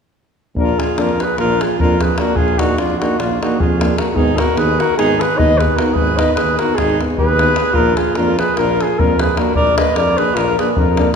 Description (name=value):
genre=balkan folk, Balkan brass band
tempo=301 BPM (eighths)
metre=9/8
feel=straight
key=Bb phrygian dominant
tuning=A4 = 439 Hz
part: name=mellow tuba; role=bass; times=0.5-11.1 s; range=Ab1 to F2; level=-22 LUFS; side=right 1 dB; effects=none
part: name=warm flugelhorn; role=melody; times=0.6-11.2 s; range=F4 to Eb5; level=-17 LUFS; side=left 2 dB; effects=none
part: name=clear alto saxophone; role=second line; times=0.6-11.2 s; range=D4 to Cb5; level=-21 LUFS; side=right 4 dB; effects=none
part: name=mellow French horn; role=accompaniment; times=0.6-11.1 s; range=D4 to Eb4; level=-24 LUFS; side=left 4 dB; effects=none
part: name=mellow euphonium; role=accompaniment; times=0.6-11.1 s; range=Bb3 to Cb4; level=-24 LUFS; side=right 4 dB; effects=none
part: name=davul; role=percussion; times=0.6-11.1 s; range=none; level=-20 LUFS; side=left 1 dB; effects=none
room=wet concert hall reverb, RT60 2.3 s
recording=minimal, uncompressed stereo recording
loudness=-13 LUFS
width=side -6 dB against mid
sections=0.6-11.2 A section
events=none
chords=0.6 Bb; 4.2 Abm; 7.7 Bb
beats=| 0.56 0.77 0.96 1.17 1.36 1.56 1.76 1.96 2.16 | 2.36 2.56 2.76 2.96 3.16 3.36 3.56 3.76 3.96 | 4.16 4.36 4.56 4.76 4.96 5.16 5.36 5.55 5.75 | 5.95 6.15 6.35 6.55 6.75 6.95 7.15 7.35 7.55 | 7.75 7.95 8.14 8.34 8.54 8.74 8.94 9.14 9.34 | 9.54 9.73 9.93 10.13 10.33 10.53 10.73 10.93 11.12